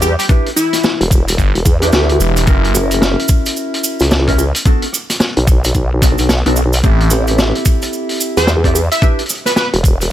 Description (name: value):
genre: glitch hop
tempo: 110 BPM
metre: 4/4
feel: swing 61% on 16ths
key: unclear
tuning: A4 = 438 Hz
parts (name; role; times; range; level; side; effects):
- plucky unison lead; melody; 0.0-1.0, 8.4-9.7 s; E4 to E5; -19 LUFS; left 1 dB; digital delay
- mellow electric guitar; stabs; 0.0-9.2 s; B3 to B4; -20 LUFS; equal; sidechain pumping, digital delay
- vowel-sweep wobble bass; bass; 0.0-10.1 s; E1 to E2; -14 LUFS; equal; chorus, tube saturation
- cabasa; percussion; 0.0-10.1 s; none; -22 LUFS; right 4 dB; none
- vintage drum kit; drums; 0.2-10.1 s; hi-hat, rim click, snare drum; -18 LUFS; equal; none
- electronic kick drum; drums; 0.3-10.0 s; none; -13 LUFS; equal; none
- phased detuned saw bass; bass; 1.4-2.7, 6.8-7.1 s; E1 to A1; -14 LUFS; equal; phaser
room: studio ambience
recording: none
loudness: -11 LUFS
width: side -12 dB against mid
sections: 0.0-10.1 A section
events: none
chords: 0.3 Em7; 2.5 F#7; 4.7 Bm7; 6.8 Am7; 9.0 Em7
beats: | 0.29 0.84 1.39 1.93 | 2.48 3.02 3.57 4.11 | 4.66 5.20 5.75 6.29 | 6.84 7.38 7.93 8.48 | 9.02 9.57